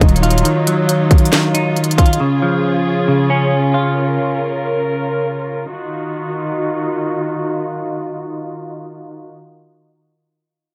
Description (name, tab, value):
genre	hip hop, trap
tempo	137 BPM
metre	4/4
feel	half-time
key	Eb minor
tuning	A4 = 440 Hz
part	semi-hollow electric guitar	accompaniment	0.0-4.8 s	Db3 to F4	-18 LUFS	equal	analog chorus, low-pass filter
part	dark studio string section	sustained chords	0.0-9.3 s	Db3 to Bb4	-22 LUFS	equal	low-pass filter
part	trap drum kit	drums	0.0-2.2 s	hi-hat, kick drum, snare drum	-15 LUFS	equal	none
room	light reverb, digital ambience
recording	none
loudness	-17 LUFS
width	mono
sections	0.0-5.7 A section; 5.7-9.2 B section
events	none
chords	0.0 Ebmadd9; 2.2 Db; 5.7 Ebmadd9